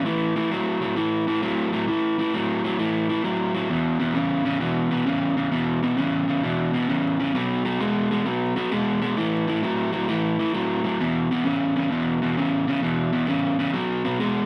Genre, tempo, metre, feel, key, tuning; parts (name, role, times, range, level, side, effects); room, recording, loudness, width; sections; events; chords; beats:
blues; 132 BPM; 4/4; swing 67% on 8ths; E major; A4 = 439 Hz
overdriven electric guitar; solo; 0.0-14.5 s; E2 to G#3; -24 LUFS; equal
wet studio reverb, RT60 0.6 s; vinyl crackle; -24 LUFS; mono
0.0-14.5 A section
0.1 A5; 3.7 E5; 7.3 B5; 9.2 A5; 11.0 E5; 13.7 B5
| 0.05 0.51 0.96 1.42 | 1.88 2.33 2.79 3.25 | 3.70 4.16 4.61 5.07 | 5.52 5.98 6.43 6.89 | 7.35 7.80 8.26 8.71 | 9.17 9.63 10.08 10.54 | 11.00 11.45 11.91 12.37 | 12.82 13.28 13.74 14.20